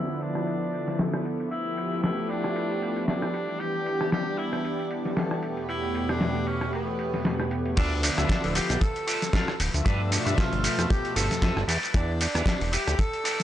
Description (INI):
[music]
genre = nu-disco, nu disco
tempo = 115 BPM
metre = 4/4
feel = swing 56% on 16ths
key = D dorian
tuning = A4 = 441 Hz
[part]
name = breathy tenor saxophone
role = melody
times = 0.0-13.4 s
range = A3 to A4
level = -32 LUFS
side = equal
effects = analog delay
[part]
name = warm analog pad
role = accompaniment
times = 0.0-12.8 s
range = E2 to E5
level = -30 LUFS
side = equal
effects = chorus
[part]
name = lush unison pad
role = sustained chords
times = 0.0-13.4 s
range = E3 to E6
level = -39 LUFS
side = equal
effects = chorus, sidechain pumping
[part]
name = dusty soul sampler-style drum kit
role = drums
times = 0.1-13.4 s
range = crash cymbal, hi-hat, ride cymbal, rim click, shaker, snare drum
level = -29 LUFS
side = equal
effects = overdrive, low-pass filter on hats, low-pass filter on snare, low-pass filter on cymbals, low-pass filter on perc, low-pass filter on room
[part]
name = electric guitar with an envelope filter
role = riff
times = 7.8-13.4 s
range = E4 to F5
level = -33 LUFS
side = right 1 dB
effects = wide subtle chorus
[part]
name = fat analog bass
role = bass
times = 7.8-13.0 s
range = D1 to G2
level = -27 LUFS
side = equal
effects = tube saturation
[part]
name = kick drum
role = drums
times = 7.8-13.1 s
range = none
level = -24 LUFS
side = equal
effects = none
[sound]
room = studio ambience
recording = dry, gritty hardware recording, low-pass filter, nothing above 10.3 kHz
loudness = -24 LUFS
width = side -12 dB against mid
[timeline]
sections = 0.0-7.8 A section; 7.8-13.4 B section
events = filter sweep 0.0-7.8; drop 7.8-13.4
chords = 0.0 Dm69; 1.5 G13; 3.3 Em7; 5.4 A9/E; 7.8 Dm69; 9.9 G13; 11.7 Em7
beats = 0.47 0.99 | 1.51 2.03 2.56 3.08 | 3.60 4.12 4.64 5.16 | 5.69 6.21 6.73 7.25 | 7.77 8.29 8.82 9.34 | 9.86 10.38 10.90 11.43 | 11.95 12.47 12.99